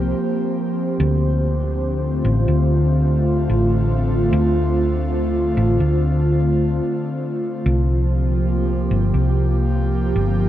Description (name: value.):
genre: ambient dub.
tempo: 72 BPM.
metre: 4/4.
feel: swing 55% on 16ths.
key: D minor.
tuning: A4 = 440 Hz.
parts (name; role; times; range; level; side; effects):
airy breathy pad; sustained chords; 0.0-10.5 s; D3 to C5; -20 LUFS; equal; chorus.
hollow-body short-scale fingered electric bass; bass; 0.0-10.5 s; G1 to D2; -18 LUFS; equal; none.
room: light reverb.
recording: none.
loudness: -17 LUFS.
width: side -12 dB against mid.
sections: 0.0-10.5 A section.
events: none.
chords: 0.0 C7sus4; 1.0 Dm7; 7.7 C7sus4.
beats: 0.16 | 1.00 1.83 2.66 3.50 | 4.33 5.16 6.00 6.83 | 7.66 8.50 9.33 10.16.